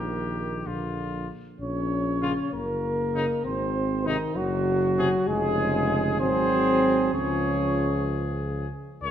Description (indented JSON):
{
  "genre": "classical, brass quintet",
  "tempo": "64 BPM (dotted quarters)",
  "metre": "6/8",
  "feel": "rubato",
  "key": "Db major",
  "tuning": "A4 = 443 Hz",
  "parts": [
    { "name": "bright trumpet", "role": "melody", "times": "0.0-9.1 s", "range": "Eb4 to Db5", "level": "-32 LUFS", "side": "left 6 dB", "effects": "none" },
    { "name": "warm flugelhorn", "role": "second line", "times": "0.0-9.1 s", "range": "Eb4 to Db5", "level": "-31 LUFS", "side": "right 6 dB", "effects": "none" },
    { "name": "mellow French horn", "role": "accompaniment", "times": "0.0-9.1 s", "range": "Eb3 to Bb4", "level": "-26 LUFS", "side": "left 2 dB", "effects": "none" },
    { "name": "warm trombone", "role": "accompaniment", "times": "0.0-9.1 s", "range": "C3 to Ab3", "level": "-34 LUFS", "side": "right 2 dB", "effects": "none" },
    { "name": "warm bass trombone", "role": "bass", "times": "0.0-9.1 s", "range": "F1 to Db2", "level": "-30 LUFS", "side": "right 1 dB", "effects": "none" }
  ],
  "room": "wet concert hall reverb, RT60 1.8 s",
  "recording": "none",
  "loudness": "-23 LUFS",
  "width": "side -10 dB against mid",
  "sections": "0.0-9.0 A section",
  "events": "none",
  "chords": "0.0 Eb/Bb; 0.7 Bb; 1.6 Bbm; 2.5 Ebm/Gb (rootless); 3.5 Ab; 4.4 N.C.; 5.3 Db/F; 6.2 Ab7; 7.1 Db"
}